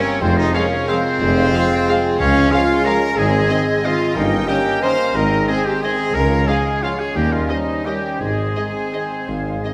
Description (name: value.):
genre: classical.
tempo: 160-196 BPM.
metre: 3/4.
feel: rubato.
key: Ab major.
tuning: A4 = 440 Hz.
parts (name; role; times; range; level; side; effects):
bright clarinet; second line; 0.0-9.7 s; C4 to F4; -30 LUFS; equal; none.
bright oboe; second line; 0.0-9.7 s; C5 to C6; -28 LUFS; equal; none.
bright small flute group; second line; 0.0-9.7 s; Ab4 to G5; -32 LUFS; equal; none.
warm studio violin section; second line; 0.0-9.7 s; Ab4 to G5; -33 LUFS; equal; none.
dark bassoon; accompaniment; 0.0-9.7 s; G3 to Bb3; -30 LUFS; equal; none.
mellow French horn section; sustained chords; 0.0-9.7 s; C4 to C5; -28 LUFS; equal; none.
concert harp; arpeggios; 0.0-9.7 s; F2 to Db5; -30 LUFS; equal; none.
bright trumpet section; stabs; 0.0-9.7 s; C4 to C5; -24 LUFS; equal; none.
warm studio cello section; bass; 0.2-9.6 s; Db2 to Ab2; -29 LUFS; equal; none.
warm studio double bass section; bass; 0.2-9.6 s; F1 to Eb2; -27 LUFS; equal; none.
warm tuba; bass; 0.2-9.6 s; F1 to Eb2; -28 LUFS; equal; none.
dark studio violin section; melody; 0.5-9.7 s; Eb5 to F5; -32 LUFS; equal; none.
warm symphonic viola section; accompaniment; 0.5-9.7 s; Ab3 to Bb4; -32 LUFS; equal; none.
mellow trombone section; sustained chords; 0.5-9.7 s; Eb3 to Db4; -32 LUFS; equal; none.
timpani; percussion; 8.2-8.7 s; none; barely audible; none; none.
room: wet scoring stage reverb, RT60 1.6 s.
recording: none.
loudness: -18 LUFS.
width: mono.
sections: 0.0-9.7 A section.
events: none.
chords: 0.2 Fm; 2.2 Db; 3.2 Ab; 4.2 Eb7/G; 5.1 Ab; 6.1 Db; 7.2 Eb7; 8.2 Ab.